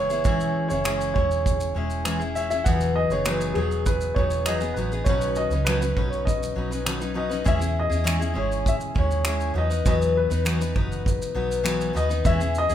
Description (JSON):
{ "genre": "acoustic pop", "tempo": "100 BPM", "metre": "4/4", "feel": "straight", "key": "unclear", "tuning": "A4 = 440 Hz", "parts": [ { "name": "warm upright piano", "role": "melody", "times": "0.0-12.7 s", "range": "G#4 to F#5", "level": "-27 LUFS", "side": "equal", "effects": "none" }, { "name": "picked steel-string acoustic guitar", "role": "accompaniment", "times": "0.0-12.7 s", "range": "B2 to B4", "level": "-26 LUFS", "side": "left 3 dB", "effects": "none" }, { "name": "vintage muted fingered electric bass", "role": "bass", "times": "0.0-12.7 s", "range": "E1 to E2", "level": "-28 LUFS", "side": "right 1 dB", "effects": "none" }, { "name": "modern studio drum kit", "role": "drums", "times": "0.1-12.7 s", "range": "finger snaps, kick drum, shaker", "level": "-27 LUFS", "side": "right 1 dB", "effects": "none" } ], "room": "moderate large studio reverb, RT60 0.9 s", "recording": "band playing live in one room", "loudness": "-21 LUFS", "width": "side -10 dB against mid", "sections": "0.0-7.5 A section; 7.5-12.7 B section", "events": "none", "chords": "0.3 C#m/E; 2.7 G#m7/E; 5.1 Badd9; 7.5 C#m; 9.6 B; 12.2 C#m", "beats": "| 0.26 0.86 1.46 2.06 | 2.66 3.26 3.87 4.46 | 5.07 5.67 6.26 6.86 | 7.46 8.06 8.66 9.26 | 9.86 10.45 11.05 11.65 | 12.25" }